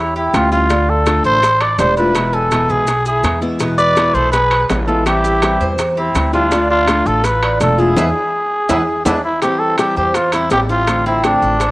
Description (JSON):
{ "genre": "latin, Cuban son and guajira", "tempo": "165 BPM", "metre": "4/4", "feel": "straight", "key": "A minor", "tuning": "A4 = 440 Hz", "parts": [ { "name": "trumpet with cup mute", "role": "melody", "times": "0.0-11.7 s", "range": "D4 to D5", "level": "-15 LUFS", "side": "equal", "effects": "none" }, { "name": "Cuban tres", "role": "arpeggios", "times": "0.0-11.7 s", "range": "B3 to G#5", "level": "-23 LUFS", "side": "right 2 dB", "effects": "cassette tape" }, { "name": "upright bass", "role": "bass", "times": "0.0-11.7 s", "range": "E1 to E2", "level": "-20 LUFS", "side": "equal", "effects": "none" }, { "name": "bongos", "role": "percussion", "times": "0.2-11.7 s", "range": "none", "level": "-24 LUFS", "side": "left 3 dB", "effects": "none" }, { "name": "nylon-string guitar", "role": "accompaniment", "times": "0.3-11.6 s", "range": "B2 to F4", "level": "-21 LUFS", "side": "left 2 dB", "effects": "cassette tape" }, { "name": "maracas", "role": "percussion", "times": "0.3-11.7 s", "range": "none", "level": "-32 LUFS", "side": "left 2 dB", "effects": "none" }, { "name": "timbales", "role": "percussion", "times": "0.3-11.7 s", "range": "none", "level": "-23 LUFS", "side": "right 2 dB", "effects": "none" }, { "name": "warm trumpet", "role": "second line", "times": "3.1-9.1 s", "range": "C4 to B4", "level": "-26 LUFS", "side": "left 1 dB", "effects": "cassette tape" } ], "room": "light reverb, small room ambience", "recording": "home recording on cassette", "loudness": "-12 LUFS", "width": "side -20 dB against mid", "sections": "0.0-9.4 A section; 9.4-11.7 B section", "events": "band accent 8.0-9.4; drum fill 8.5-9.4", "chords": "0.0 A7 (rootless); 0.7 Dm; 2.2 E; 5.1 Am7; 6.5 Dm; 8.0 E; 9.4 Am7; 10.9 Dm7/A" }